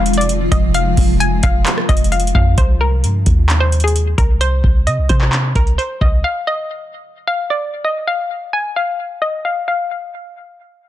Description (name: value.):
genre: hip hop, trap.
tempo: 131 BPM.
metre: 4/4.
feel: half-time.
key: C minor.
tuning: A4 = 440 Hz.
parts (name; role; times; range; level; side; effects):
hollow square pluck; melody; 0.0-9.9 s; Ab4 to Ab5; -19 LUFS; left 2 dB; chorus, low-pass filter, ping-pong delay.
granular cloud pad; sustained chords; 0.0-2.5 s; C3 to F4; -21 LUFS; left 1 dB; built-in reverb.
clean 808-style bass; bass; 0.0-6.2 s; F1 to C3; -16 LUFS; equal; none.
booming analog drum machine; drums; 0.1-6.2 s; handclaps, hi-hat, kick drum, rim click; -15 LUFS; equal; overdrive.
room: little or no reverb.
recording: dense, heavily limited modern master, low-pass filter.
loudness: -13 LUFS.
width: side -13 dB against mid.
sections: 0.0-2.6 A section; 2.6-9.9 B section.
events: filter sweep 2.6-9.9.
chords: 0.0 Fm; 2.6 Cm; 6.2 N.C..